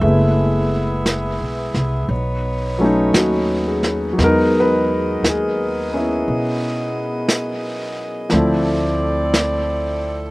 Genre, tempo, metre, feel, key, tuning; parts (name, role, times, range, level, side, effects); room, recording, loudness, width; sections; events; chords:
jazz ballad; 58 BPM; 4/4; swing 67% on 8ths; A4 = 440 Hz
warm grand piano; accompaniment; 0.0-10.3 s; F3 to B4; -19 LUFS; equal; slapback echo
mellow saxophone section; sustained chords; 0.0-10.3 s; B3 to E5; -24 LUFS; equal
upright bass; bass; 0.0-10.3 s; F#1 to B2; -22 LUFS; equal
vintage brush drum kit; drums; 0.0-10.3 s; brushed snare drum, hi-hat, snare drum; -22 LUFS; equal
little or no reverb; recorded outdoors, with no room sound; -16 LUFS; side -21 dB against mid
0.0-10.3 A section
0.0 F#m11; 2.1 B9; 4.2 Emaj7; 8.3 Dm7